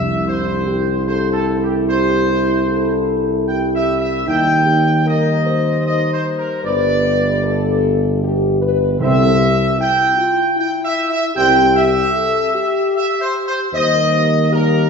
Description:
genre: classical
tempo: 76 BPM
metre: 3/4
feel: straight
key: unclear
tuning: A4 = 440 Hz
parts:
  - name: mellow trumpet section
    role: melody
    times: 0.0-14.9 s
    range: G4 to G5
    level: -18 LUFS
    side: equal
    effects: none
  - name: dark trombone section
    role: sustained chords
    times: 0.0-14.9 s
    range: G3 to E4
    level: -23 LUFS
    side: right 3 dB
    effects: none
  - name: warm tuba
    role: bass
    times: 0.0-14.9 s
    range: G1 to Eb2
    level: -19 LUFS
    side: right 2 dB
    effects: none
  - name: timpani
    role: percussion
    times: 0.0-0.6, 9.0-10.1 s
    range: C3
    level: -24 LUFS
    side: left 1 dB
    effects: none
  - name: mellow French horn section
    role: sustained chords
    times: 0.3-14.9 s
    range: Eb4 to C5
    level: -20 LUFS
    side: left 5 dB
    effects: none
room: wet scoring stage reverb, RT60 1.7 s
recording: heard from further back in the room, nothing above 7.6 kHz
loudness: -14 LUFS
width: side -5 dB against mid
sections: 0.0-14.9 A section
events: none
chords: 0.0 C; 4.3 Eb; 6.6 G; 9.0 C; 13.7 Eb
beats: 0.26 1.06 | 1.88 2.69 3.49 | 4.28 5.07 5.86 | 6.64 7.43 8.22 | 9.01 9.80 10.58 | 11.37 12.15 12.94 | 13.73 14.52

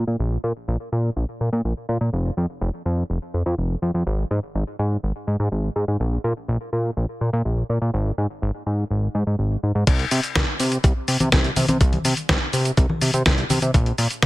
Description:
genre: italo disco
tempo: 124 BPM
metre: 4/4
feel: straight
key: unclear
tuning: A4 = 439 Hz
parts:
  - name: fat analog bass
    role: bass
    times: 0.0-14.3 s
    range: F1 to C3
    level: -21 LUFS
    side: equal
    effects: tube saturation, digital delay
  - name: dusty soul sampler-style drum kit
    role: drums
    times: 9.9-14.3 s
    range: cabasa, congas, crash cymbal, hi-hat, snare drum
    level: -21 LUFS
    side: left 1 dB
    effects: gated reverb
  - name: electronic kick drum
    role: drums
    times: 9.9-14.3 s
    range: none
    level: -19 LUFS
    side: equal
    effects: none
room: digital ambience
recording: none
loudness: -20 LUFS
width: side -19 dB against mid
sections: 0.0-9.9 A section; 9.9-14.3 B section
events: none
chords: none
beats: | 0.19 0.68 1.16 1.65 | 2.13 2.61 3.10 3.58 | 4.07 4.55 5.03 5.52 | 6.00 6.49 6.97 7.45 | 7.94 8.42 8.90 9.39 | 9.87 10.36 10.84 11.32 | 11.81 12.29 12.78 13.26 | 13.74 14.23

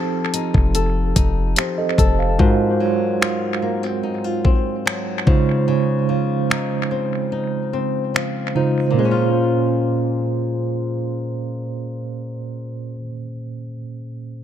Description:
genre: contemporary R&B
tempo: 73 BPM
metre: 4/4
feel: straight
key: Bb minor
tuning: A4 = 439 Hz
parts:
  - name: mellow tine electric piano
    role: accompaniment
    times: 0.0-14.4 s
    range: Bb2 to F5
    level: -21 LUFS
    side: right 3 dB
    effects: medium stereo tremolo, analog delay
  - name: flamenco guitar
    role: arpeggios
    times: 0.0-13.2 s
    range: Ab2 to A4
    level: -25 LUFS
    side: left 6 dB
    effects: analog delay
  - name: smooth R&B drum kit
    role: drums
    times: 0.3-8.3 s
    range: finger snaps, hi-hat, kick drum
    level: -19 LUFS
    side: equal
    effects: analog delay
  - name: warm 808-style bass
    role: bass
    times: 0.5-2.4 s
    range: F1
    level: -20 LUFS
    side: left 1 dB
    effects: none
room: light reverb, digital ambience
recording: echo-heavy mix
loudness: -17 LUFS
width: side -10 dB against mid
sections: 0.0-9.0 A section; 9.0-12.3 B section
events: none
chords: 0.0 F7; 2.4 Ab13; 5.3 Dbmaj9; 9.0 Bbm7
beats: 0.75 1.57 | 2.39 3.21 4.04 4.86 | 5.68 6.50 7.32 8.14 | 8.97 9.79 10.61 11.43

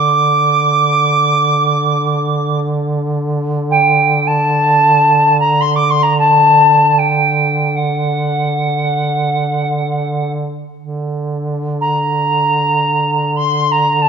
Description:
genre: caucasian folk, Caucasian lament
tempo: free time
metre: none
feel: none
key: unclear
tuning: A4 = 441 Hz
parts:
  - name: mellow alto recorder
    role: melody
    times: 0.0-14.1 s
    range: F#5 to D6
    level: -12 LUFS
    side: right 1 dB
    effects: none
  - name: dark duduk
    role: drone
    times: 0.0-14.1 s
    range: D3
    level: -17 LUFS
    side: right 1 dB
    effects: none
room: light reverb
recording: minimal, uncompressed stereo recording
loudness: -12 LUFS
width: side -6 dB against mid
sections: 0.0-14.1 A section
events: none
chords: none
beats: free time

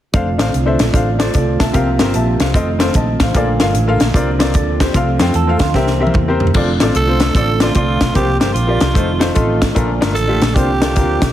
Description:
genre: uptempo gospel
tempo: 150 BPM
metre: 4/4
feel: swing 64% on 8ths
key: F major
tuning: A4 = 440 Hz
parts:
  - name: bright upright piano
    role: accompaniment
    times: 0.1-11.2 s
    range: Bb2 to C6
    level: -19 LUFS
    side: left 3 dB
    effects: none
  - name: dark French horn section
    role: sustained chords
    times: 0.1-11.3 s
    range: F3 to A4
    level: -26 LUFS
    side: right 3 dB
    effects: none
  - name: mellow tonewheel organ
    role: sustained chords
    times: 0.1-11.3 s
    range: D3 to A4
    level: -24 LUFS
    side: right 4 dB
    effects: slow rotary speaker
  - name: hollow-body short-scale fingered electric bass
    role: bass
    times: 0.1-11.3 s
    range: E1 to F2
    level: -18 LUFS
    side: equal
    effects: none
  - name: tight funk drum kit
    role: drums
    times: 0.1-11.3 s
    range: crash cymbal, hi-hat, kick drum, snare drum, toms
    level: -17 LUFS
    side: left 1 dB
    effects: none
  - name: semi-hollow electric guitar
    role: second line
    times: 5.4-6.4 s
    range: C4 to A4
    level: -23 LUFS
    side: right 5 dB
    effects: none
  - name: growling tenor saxophone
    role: melody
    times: 7.0-11.3 s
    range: F4 to A4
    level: -20 LUFS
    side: right 3 dB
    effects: tape echo
room: moderate scoring stage reverb, RT60 1.9 s, small room ambience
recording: heavily compressed radio sound, multiband compression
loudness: -12 LUFS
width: side -12 dB against mid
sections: 0.1-6.5 A section; 6.5-11.3 B section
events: drum fill 5.7-6.5; upright piano fill 9.2-9.8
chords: 0.1 F6; 1.7 C7sus4; 2.5 F7; 3.3 Bbmaj7; 4.1 C9sus4; 4.9 F/C; 5.7 C7; 6.5 F6; 8.2 C7sus4; 9.0 F7; 9.8 Bbmaj7; 10.6 C9sus4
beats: | 0.14 0.54 0.94 1.34 | 1.74 2.14 2.54 2.94 | 3.34 3.75 4.15 4.55 | 4.95 5.35 5.75 6.15 | 6.55 6.95 7.35 7.75 | 8.15 8.55 8.96 9.36 | 9.76 10.16 10.56 10.96

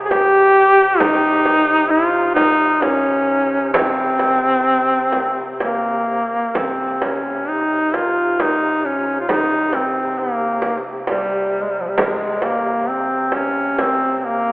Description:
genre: caucasian folk, Caucasian lament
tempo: 66 BPM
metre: 3/4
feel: rubato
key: C phrygian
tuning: A4 = 440 Hz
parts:
  - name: mellow duduk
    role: drone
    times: 0.0-14.5 s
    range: C3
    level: -28 LUFS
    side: equal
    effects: none
  - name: warm duduk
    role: melody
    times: 0.1-14.5 s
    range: F3 to Ab4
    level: -16 LUFS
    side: equal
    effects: none
  - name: frame drum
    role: percussion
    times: 0.1-14.0 s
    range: none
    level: -24 LUFS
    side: right 1 dB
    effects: none
room: wet cathedral reverb, RT60 4.5 s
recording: recorded in a church or concert hall, telephone sound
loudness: -15 LUFS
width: side -22 dB against mid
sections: 0.0-6.5 A section; 6.5-14.5 B section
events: none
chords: none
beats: 0.11 | 1.01 1.91 2.83 | 3.74 4.65 5.59 | 6.54 7.48 8.39 | 9.28 10.17 11.07 | 11.97 12.87 13.78

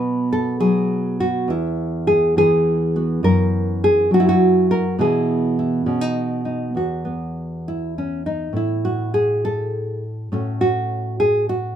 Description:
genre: folk, solo fingerstyle acoustic guitar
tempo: 68 BPM (dotted quarters)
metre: 6/8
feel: straight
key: E major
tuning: A4 = 439 Hz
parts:
  - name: nylon-string guitar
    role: solo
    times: 0.0-11.8 s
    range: E2 to B4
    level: -17 LUFS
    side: equal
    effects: none
room: light reverb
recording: minimal, uncompressed stereo recording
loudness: -17 LUFS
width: side -9 dB against mid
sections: 0.0-6.8 A section; 6.8-11.8 B section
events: none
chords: 0.0 B5; 1.5 Eadd9; 3.2 F#7; 5.0 E/B; 5.9 B; 6.8 Esus2; 8.5 N.C.; 10.3 F#m/A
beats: 0.60 | 1.49 2.37 | 3.25 4.12 | 4.99 5.88 | 6.76 7.65 | 8.54 9.43 | 10.32 11.21

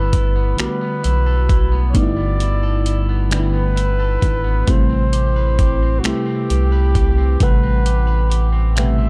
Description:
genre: slow six-eight R&B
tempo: 44 BPM (dotted quarters)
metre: 6/8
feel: straight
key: A dorian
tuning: A4 = 441 Hz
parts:
  - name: warm flugelhorn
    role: melody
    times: 0.0-9.1 s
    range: F#4 to E5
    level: -27 LUFS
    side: equal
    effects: none
  - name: electric guitar at the edge of break-up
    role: second line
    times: 0.0-9.1 s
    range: G3 to B4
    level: -32 LUFS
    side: equal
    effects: spring reverb
  - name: mellow FM electric piano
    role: accompaniment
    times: 0.0-9.1 s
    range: B2 to F#5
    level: -26 LUFS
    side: equal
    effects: chorus, phaser
  - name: rubbery square bass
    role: bass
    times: 0.0-9.1 s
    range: G1 to C2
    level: -19 LUFS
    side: equal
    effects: none
  - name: dusty soul sampler-style drum kit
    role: drums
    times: 0.1-9.0 s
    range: finger snaps, hi-hat, kick drum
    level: -20 LUFS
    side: equal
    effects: none
room: digital ambience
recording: dark, warm production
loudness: -17 LUFS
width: mono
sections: 0.0-9.1 A section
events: none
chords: 0.0 G69; 4.7 Am9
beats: 0.58 | 1.95 3.31 | 4.67 6.04 | 7.40 8.76

